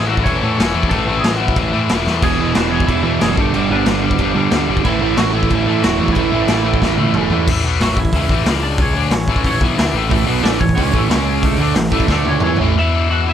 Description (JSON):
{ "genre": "punk rock", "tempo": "183 BPM", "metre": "4/4", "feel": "straight", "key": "A major", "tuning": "A4 = 440 Hz", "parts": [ { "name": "lightly driven lead guitar", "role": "melody", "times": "0.0-13.3 s", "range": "E3 to F#5", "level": "-22 LUFS", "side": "right 2 dB", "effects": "none" }, { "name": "distorted electric guitar", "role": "riff", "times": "0.0-13.3 s", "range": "E2 to E4", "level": "-20 LUFS", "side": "left 8 dB", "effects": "overdrive" }, { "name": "growling picked electric bass", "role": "bass", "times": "0.0-12.7 s", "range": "E1 to A2", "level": "-21 LUFS", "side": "equal", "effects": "overdrive" }, { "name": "raw garage drum kit", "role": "drums", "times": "0.2-12.6 s", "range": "crash cymbal, hi-hat, kick drum, snare drum, splash cymbal, toms", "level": "-18 LUFS", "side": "equal", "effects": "none" }, { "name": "crunchy overdriven guitar", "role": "riff", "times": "2.2-7.5, 10.1-12.7 s", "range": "E2 to E4", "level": "-19 LUFS", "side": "right 13 dB", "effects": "none" } ], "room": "light reverb", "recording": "none", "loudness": "-13 LUFS", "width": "side -9 dB against mid", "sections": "0.0-7.5 A section; 7.5-12.7 B section", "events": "drum fill 2.1, 6.8-7.5, 12.1-12.7", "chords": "0.0 A; 2.2 E; 3.4 G; 4.9 A5; 7.5 A; 8.5 C#5; 9.0 A; 11.1 C#5; 11.6 A5; 12.1 D5; 12.4 A; 12.7 E5" }